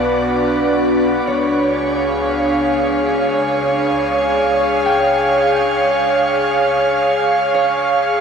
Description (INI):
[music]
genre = ambient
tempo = free time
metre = none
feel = none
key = unclear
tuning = A4 = 440 Hz
[part]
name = airy breathy pad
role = sustained chords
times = 0.0-8.2 s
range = B3 to E#5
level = -15 LUFS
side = right 1 dB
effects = chorus
[part]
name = concert harp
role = arpeggios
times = 0.0-8.2 s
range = C#5 to G5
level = -27 LUFS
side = left 2 dB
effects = none
[part]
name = rich symphonic double bass section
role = bass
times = 0.0-8.2 s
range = B1 to C#2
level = -33 LUFS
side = equal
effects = none
[part]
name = overtone-sweeping drone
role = drone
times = 0.0-8.2 s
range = D4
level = -22 LUFS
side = left 1 dB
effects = chorus, built-in reverb
[sound]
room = wet shimmer reverb, RT60 9.1 s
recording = none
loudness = -14 LUFS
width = side -6 dB against mid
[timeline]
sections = 0.0-8.2 A section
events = fade-out on double bass section 0.0-8.2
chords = 0.0 Bm; 1.3 C#